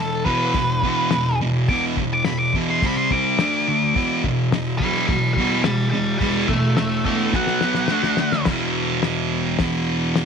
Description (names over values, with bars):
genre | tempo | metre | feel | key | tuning
garage rock duo or trio | 106 BPM | 4/4 | straight | E minor | A4 = 440 Hz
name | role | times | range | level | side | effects
octave-fuzz lead guitar | melody | 0.0-8.4 s | A4 to D6 | -22 LUFS | equal | distortion
thick fuzz guitar | riff | 0.0-10.3 s | E2 to D4 | -20 LUFS | right 1 dB | distortion
cloth-damped thuddy drum kit | drums | 0.3-10.3 s | crash cymbal, hi-hat, kick drum, snare drum | -25 LUFS | left 3 dB | none
room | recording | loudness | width
light reverb, small room ambience | 1960s-style stereo | -18 LUFS | side -6 dB against mid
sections
0.0-8.5 A section; 8.5-10.3 B section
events
lead electric guitar solo 0.0-8.5; drum fill 7.3-8.5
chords
0.0 E5; 2.8 C5; 3.4 D5; 4.0 Em; 7.3 B5; 7.9 D5; 8.5 E5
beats
0.55 1.12 | 1.69 2.25 2.82 3.39 | 3.96 4.52 5.09 5.65 | 6.22 6.78 7.35 7.91 | 8.47 9.04 9.60 10.17